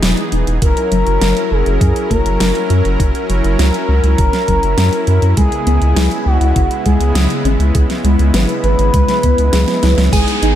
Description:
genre	synthwave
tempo	101 BPM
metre	4/4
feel	straight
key	unclear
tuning	A4 = 439 Hz
part	soft supersaw	sustained chords	0.0-10.6 s	C#3 to A#4	-20 LUFS	equal	sidechain pumping
part	soft round pluck	arpeggios	0.0-10.6 s	F#3 to B4	-22 LUFS	left 2 dB	wide subtle chorus, vintage 12-bit sampler grit, diffuse ambient delay
part	round analog bass	bass	0.0-10.5 s	E1 to F#2	-14 LUFS	equal	sidechain pumping
part	pop drum kit	drums	0.0-10.5 s	crash cymbal, hi-hat, snare drum, tambourine	-20 LUFS	equal	small room ambience
part	expressive synth lead	melody	0.6-10.6 s	F#4 to B4	-19 LUFS	left 1 dB	chorus, tape echo
part	electronic kick drum	drums	0.6-10.2 s	none	-16 LUFS	equal	small room ambience
part	soft synth bell	second line	10.1-10.6 s	G#5	-23 LUFS	right 1 dB	chorus, phaser
part	downlifter	sound effects	10.1-10.6 s	none	-20 LUFS	equal	none
room	moderate plate reverb, RT60 2.2 s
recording	dreamy mix soaked in reverb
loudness	-11 LUFS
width	side -11 dB against mid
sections	0.0-10.1 A section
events	drum fill 9.7-10.1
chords	0.0 Emaj7; 0.6 F#7; 5.4 C#m7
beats	0.03 | 0.62 1.22 1.81 2.40 | 3.00 3.59 4.19 4.78 | 5.37 5.97 6.56 7.16 | 7.75 8.34 8.94 9.53 | 10.13

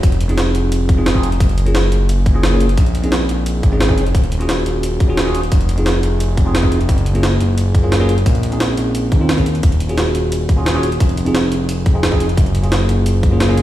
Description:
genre	liquid drum and bass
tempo	175 BPM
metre	4/4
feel	straight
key	Bb minor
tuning	A4 = 440 Hz
part	smooth synth bass	bass	0.0-13.6 s	Eb1 to Eb2	-16 LUFS	equal	none
part	electronic kick drum	drums	0.0-13.3 s	none	-13 LUFS	equal	none
part	jungle sampler-style drum kit	drums	0.0-13.6 s	hi-hat, snare drum	-22 LUFS	equal	overdrive
part	bell-like tine electric piano	accompaniment	0.3-13.6 s	Bb3 to Ab4	-20 LUFS	equal	phaser, ping-pong delay
room	light reverb, digital ambience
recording	played on a big sound system in a bare room, stone room reverb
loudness	-13 LUFS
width	side -13 dB against mid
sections	0.0-13.6 A section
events	none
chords	0.0 Fm7; 1.4 Gbmaj9; 2.8 Bbm11; 4.1 Ebm11; 5.5 Fm7; 6.9 Gbmaj9; 8.3 Bbm11; 9.6 Ebm11; 11.0 Fm7; 12.4 Gbmaj9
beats	| 0.03 0.38 0.72 1.06 | 1.40 1.75 2.09 2.43 | 2.77 3.12 3.46 3.80 | 4.15 4.49 4.83 5.17 | 5.52 5.86 6.20 6.55 | 6.89 7.23 7.58 7.92 | 8.26 8.60 8.95 9.29 | 9.63 9.97 10.32 10.66 | 11.00 11.35 11.69 12.03 | 12.38 12.72 13.06 13.40

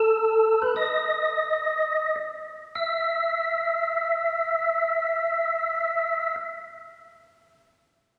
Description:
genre	jazz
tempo	free time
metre	none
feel	none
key	unclear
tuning	A4 = 443 Hz
part	percussive tonewheel organ	solo	0.0-6.4 s	A4 to E5	-25 LUFS	equal	slow rotary speaker, overdrive, chorus vibrato
room	wet concert hall reverb, RT60 2.2 s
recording	recorded in a church or concert hall, small room ambience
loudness	-25 LUFS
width	mono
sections	0.0-2.7 A section; 2.7-7.3 B section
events	slowing down 0.0-2.7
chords	none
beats	free time

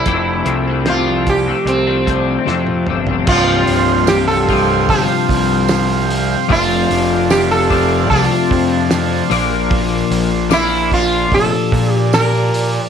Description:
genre	psychedelic rock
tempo	75 BPM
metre	4/4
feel	straight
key	unclear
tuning	A4 = 440 Hz
part	sitar	melody	0.0-12.7 s	C4 to Bb4	-17 LUFS	right 2 dB	slapback echo
part	twelve-string electric guitar	riff	0.0-12.9 s	C2 to Bb4	-18 LUFS	left 10 dB	rotary speaker
part	fuzz picked electric bass	bass	0.1-12.8 s	C1 to Bb2	-19 LUFS	right 2 dB	overdrive
part	cloth-damped thuddy drum kit	drums	0.1-12.7 s	crash cymbal, hi-hat, kick drum, snare drum, toms	-21 LUFS	right 1 dB	none
part	hand-pumped harmonium	sustained chords	3.3-12.9 s	C5 to C6	-21 LUFS	right 16 dB	none
part	tambourine	percussion	4.1-12.3 s	none	-30 LUFS	right 21 dB	none
room	light reverb, studio reverb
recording	1960s-style stereo with parts hard left and right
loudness	-12 LUFS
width	side -7 dB against mid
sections	0.0-3.3 A section; 3.3-12.9 B section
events	drum fill 2.5-3.3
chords	0.1 F6; 3.3 Csus4; 6.5 F6; 9.3 Bbadd9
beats	| 0.07 0.87 1.68 2.48 | 3.28 4.09 4.89 5.69 | 6.50 7.30 8.10 8.91 | 9.71 10.52 11.32 12.13

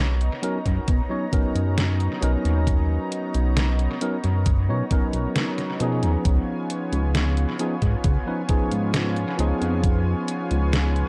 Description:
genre	vaporwave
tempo	67 BPM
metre	4/4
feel	straight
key	B lydian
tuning	A4 = 444 Hz
part	lush unison pad	sustained chords	0.0-11.1 s	B3 to A#5	-34 LUFS	equal	chorus, vintage 12-bit sampler grit
part	chorused synth bass	bass	0.0-11.0 s	B1 to C#3	-25 LUFS	equal	none
part	detuned 8-bit digital drum machine	drums	0.2-11.1 s	hi-hat, snare drum	-31 LUFS	equal	vintage 12-bit sampler grit, dub echo
part	bright tine electric piano	accompaniment	0.4-11.1 s	E#3 to C#5	-30 LUFS	equal	subtle chorus, dub echo
part	electronic kick drum	drums	0.7-10.0 s	none	-24 LUFS	equal	vintage 12-bit sampler grit
room	light reverb, digital ambience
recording	echo-heavy mix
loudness	-23 LUFS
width	mono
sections	0.0-11.1 A section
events	none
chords	0.0 Bmaj9; 6.3 C#7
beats	0.88 1.78 | 2.67 3.57 4.46 5.36 | 6.25 7.15 8.05 8.94 | 9.84 10.73

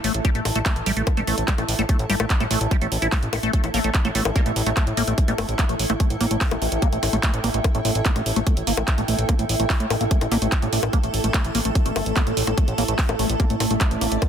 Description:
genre	psychedelic trance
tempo	146 BPM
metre	4/4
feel	straight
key	unclear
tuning	A4 = 440 Hz
part	liquid acid bass	riff	0.0-14.2 s	G3 to E4	-26 LUFS	moving between left 5 dB and right 5 dB	phaser, auto-pan, sidechain pumping, tape echo
part	fat analog bass	bass	0.0-14.2 s	G1 to A2	-25 LUFS	equal	none
part	drum and bass drum kit	drums	0.0-14.3 s	bongos, handclaps, hi-hat	-26 LUFS	equal	none
part	granular cloud pad	texture	0.0-14.3 s	E4 to A5	-29 LUFS	right 1 dB	built-in reverb, sidechain pumping
part	electronic kick drum	drums	0.2-14.3 s	none	-20 LUFS	equal	none
part	resonant blip pluck	second line	3.7-4.9, 10.3-10.8 s	G3 to A3	-37 LUFS	left 4 dB	none
part	evolving wavetable pad	sustained chords	10.9-14.3 s	A3 to D5	-29 LUFS	right 1 dB	ensemble chorus, built-in reverb, phaser, sidechain pumping
room	light reverb, digital ambience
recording	dense, heavily limited modern master, faint mains hum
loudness	-19 LUFS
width	side -8 dB against mid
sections	0.0-14.3 A section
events	filter sweep on acid bass 0.0-14.3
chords	0.0 A5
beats	| 0.25 0.66 1.07 1.48 | 1.89 2.30 2.71 3.12 | 3.54 3.95 4.36 4.77 | 5.18 5.59 6.00 6.41 | 6.82 7.23 7.64 8.05 | 8.47 8.88 9.29 9.70 | 10.11 10.52 10.93 11.34 | 11.75 12.16 12.58 12.99 | 13.40 13.81 14.22

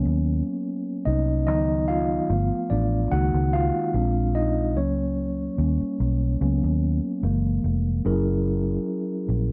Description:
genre	R&B, neo-soul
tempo	73 BPM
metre	4/4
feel	swing 54% on 16ths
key	unclear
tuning	A4 = 440 Hz
part	mellow tine electric piano	accompaniment	0.0-9.5 s	D#3 to F#5	-27 LUFS	equal	none
part	vintage muted fingered electric bass	bass	0.0-9.5 s	E#1 to D#2	-26 LUFS	equal	none
room	little or no reverb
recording	dry, close 1970s-style studio recording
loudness	-24 LUFS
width	mono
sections	0.0-8.0 A section; 8.0-9.5 B section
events	tine electric piano solo 0.0-8.0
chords	0.0 Bmaj9; 1.5 C#9sus4; 2.3 G9; 3.1 F#69/C#; 3.9 A#7; 4.8 F#/C#; 5.6 D#7; 6.4 C#13sus4; 7.2 F#9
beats	0.65 | 1.47 2.29 3.11 3.93 | 4.75 5.58 6.40 7.22 | 8.04 8.86

